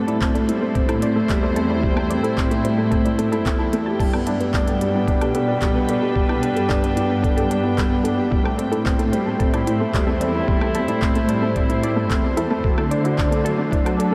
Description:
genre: piano and strings electronica.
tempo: 111 BPM.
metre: 4/4.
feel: straight.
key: A minor.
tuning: A4 = 440 Hz.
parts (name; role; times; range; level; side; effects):
warm studio string section; sustained chords; 0.0-14.1 s; D3 to G5; -28 LUFS; equal; none.
felt-muted upright piano; riff; 0.0-14.1 s; F#3 to A4; -24 LUFS; equal; delay.
warbly dusty pluck; arpeggios; 0.1-14.0 s; A3 to A5; -32 LUFS; equal; none.
dark studio cello section; bass; 0.1-14.1 s; E2 to F#3; -28 LUFS; equal; sidechain pumping.
organic electronic drum kit; drums; 0.1-14.1 s; crash cymbal, handclaps, hi-hat, woodblock; -36 LUFS; equal; overdrive.
electronic kick drum; drums; 0.2-13.8 s; none; -25 LUFS; equal; none.
room: moderate huge ambient reverb, RT60 7.8 s.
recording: dreamy mix soaked in reverb.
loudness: -20 LUFS.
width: mono.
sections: 0.0-14.1 A section.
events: none.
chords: 0.0 Am7; 4.0 G; 8.3 Am7; 12.6 D.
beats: 0.21 0.75 1.29 | 1.83 2.37 2.91 3.46 | 4.00 4.54 5.08 5.62 | 6.16 6.70 7.24 7.78 | 8.32 8.86 9.40 9.94 | 10.48 11.02 11.56 12.10 | 12.64 13.19 13.72.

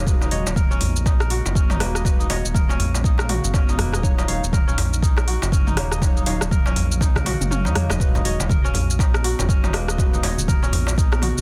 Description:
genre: afro house.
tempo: 121 BPM.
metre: 4/4.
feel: swing 59% on 16ths.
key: unclear.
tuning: A4 = 440 Hz.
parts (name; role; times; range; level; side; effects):
ethereal airy pad; sustained chords; 0.2-11.4 s; Db3 to F5; -35 LUFS; equal; ensemble chorus, built-in reverb, sidechain pumping.
kora; arpeggios; 0.0-11.4 s; Bb3 to Eb5; -32 LUFS; equal; sidechain pumping, digital delay.
warm analog keys; stabs; 0.0-10.4 s; Gb3 to F5; -34 LUFS; equal; chorus, sidechain pumping, digital delay.
round analog bass; bass; 0.0-11.4 s; Eb1 to Eb2; -27 LUFS; equal; sidechain pumping.
deep house drum kit; drums; 0.1-11.4 s; hi-hat, rim click, shaker, toms; -29 LUFS; equal; overdrive.
electronic kick drum; drums; 0.1-11.1 s; none; -22 LUFS; equal; overdrive.
darbuka; percussion; 0.2-11.3 s; none; -30 LUFS; equal; none.
congas; percussion; 8.1-11.3 s; none; -32 LUFS; equal; none.
room: little or no reverb.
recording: dense, heavily limited modern master.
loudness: -20 LUFS.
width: mono.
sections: 0.0-11.4 A section.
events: drum fill 7.0-8.0; kick drops out 7.5-8.0.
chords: 0.1 Abm7/Eb; 4.0 Ebm7; 8.0 Abm7/Eb.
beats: | 0.07 0.56 1.06 1.56 | 2.05 2.55 3.04 3.54 | 4.04 4.53 5.03 5.52 | 6.02 6.51 7.01 7.51 | 8.00 8.50 8.99 9.49 | 9.99 10.48 10.98.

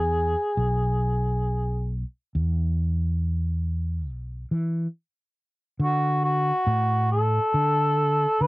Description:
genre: acoustic folk-pop ballad.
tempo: 69 BPM.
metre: 4/4.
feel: straight.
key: unclear.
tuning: A4 = 440 Hz.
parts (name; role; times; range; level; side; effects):
dark cor anglais; melody; 0.0-8.5 s; F#4 to B4; -23 LUFS; equal; cassette tape.
fretless electric bass; bass; 0.0-8.5 s; B1 to E3; -24 LUFS; equal; none.
room: light reverb.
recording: home recording on cassette.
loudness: -22 LUFS.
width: side -20 dB against mid.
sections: 0.0-2.4 A section; 2.4-5.8 B section; 5.8-8.5 C section.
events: none.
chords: 0.0 E5; 5.8 D.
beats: 0.58 1.47 | 2.35 3.22 4.08 4.94 | 5.80 6.67 7.54 8.41.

